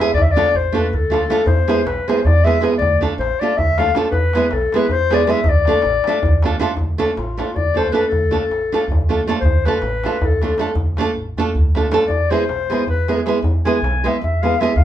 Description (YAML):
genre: balkan folk, Balkan wedding band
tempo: 317 BPM (eighths)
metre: 7/8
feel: straight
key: D dorian sharp4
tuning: A4 = 440 Hz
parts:
  - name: mellow clarinet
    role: melody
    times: 0.0-14.8 s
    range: F4 to G#5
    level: -19 LUFS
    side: left 4 dB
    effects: none
  - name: nylon-string guitar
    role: accompaniment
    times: 0.0-14.7 s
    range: G#3 to A4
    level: -19 LUFS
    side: right 3 dB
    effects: none
  - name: upright bass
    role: bass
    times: 0.1-14.8 s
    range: A1 to E2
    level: -20 LUFS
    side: equal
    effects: none
  - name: darbuka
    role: percussion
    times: 0.1-14.8 s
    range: none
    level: -22 LUFS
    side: equal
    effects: none
room: wet studio reverb, RT60 0.5 s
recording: band playing live in one room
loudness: -15 LUFS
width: side -11 dB against mid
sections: 0.0-6.8 A section; 6.8-14.8 B section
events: drum fill 0.5-1.5, 11.1-12.1; clarinet solo 6.8-14.8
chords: 0.1 Dm; 1.5 E; 2.8 Dm; 4.1 E; 5.5 Dm; 12.1 E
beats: | 0.15 0.34 0.53 0.72 0.91 1.10 1.29 | 1.48 1.67 1.85 2.04 2.23 2.42 2.61 | 2.80 2.99 3.18 3.37 3.56 3.75 3.94 | 4.13 4.32 4.50 4.69 4.88 5.07 5.26 | 5.45 5.64 5.83 6.02 6.21 6.40 6.58 | 6.77 6.96 7.15 7.34 7.53 7.72 7.91 | 8.10 8.29 8.48 8.67 8.86 9.05 9.24 | 9.43 9.62 9.81 10.00 10.19 10.38 10.57 | 10.76 10.95 11.14 11.33 11.53 11.72 11.91 | 12.10 12.29 12.48 12.67 12.86 13.05 13.24 | 13.44 13.63 13.82 14.01 14.20 14.39 14.58 | 14.78